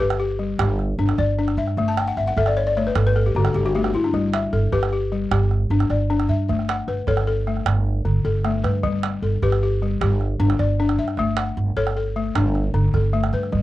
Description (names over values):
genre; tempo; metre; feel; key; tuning
west african traditional, West African string and xylophone music; 102 BPM (dotted quarters); 12/8; straight; G lydian; A4 = 441 Hz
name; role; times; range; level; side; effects
balafon; arpeggios; 0.0-13.6 s; D3 to A5; -22 LUFS; left 4 dB; cassette tape
upright bass; bass; 0.0-13.6 s; G1 to G2; -21 LUFS; right 1 dB; none
calabash; percussion; 0.0-13.6 s; none; -28 LUFS; right 8 dB; none
room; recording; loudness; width
light reverb; home recording on cassette; -18 LUFS; side -15 dB against mid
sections
0.0-13.6 A section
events
balafon fill 1.9-4.1; drum fill 7.9-8.8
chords
0.0 G; 1.8 A5/G; 3.0 D5/G; 4.1 G; 6.5 A/G; 7.7 D5/G; 8.8 G; 11.2 A/G; 12.3 D5/G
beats
0.00 0.59 1.18 | 1.77 2.37 2.96 3.55 | 4.14 4.73 5.32 5.90 | 6.49 7.08 7.67 8.25 | 8.84 9.42 10.01 10.60 | 11.18 11.77 12.35 12.94 | 13.52